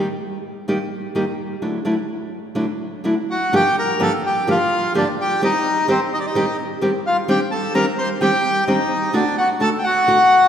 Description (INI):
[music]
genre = tango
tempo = 128 BPM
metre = 4/4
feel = rubato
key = G minor from 3.5 s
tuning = A4 = 440 Hz
[part]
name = nylon-string guitar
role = accompaniment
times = 0.0-10.2 s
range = G2 to G4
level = -21 LUFS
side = right 1 dB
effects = none
[part]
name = bandoneon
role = melody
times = 3.3-10.5 s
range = C4 to C6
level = -17 LUFS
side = left 1 dB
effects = none
[sound]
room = wet church reverb, RT60 3.2 s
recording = recorded in a church or concert hall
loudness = -17 LUFS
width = side -9 dB against mid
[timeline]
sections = 0.0-3.5 A section; 3.5-10.5 B section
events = none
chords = 0.0 Eb; 1.6 Dadd9; 3.5 Gm7; 5.4 Eb6; 7.3 Cmadd9/Eb; 9.1 D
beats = 0.21 0.68 1.15 | 1.62 2.09 2.56 3.04 | 3.52 4.00 4.47 4.95 | 5.42 5.88 6.35 6.81 | 7.28 7.75 8.21 8.67 | 9.14 9.61 10.07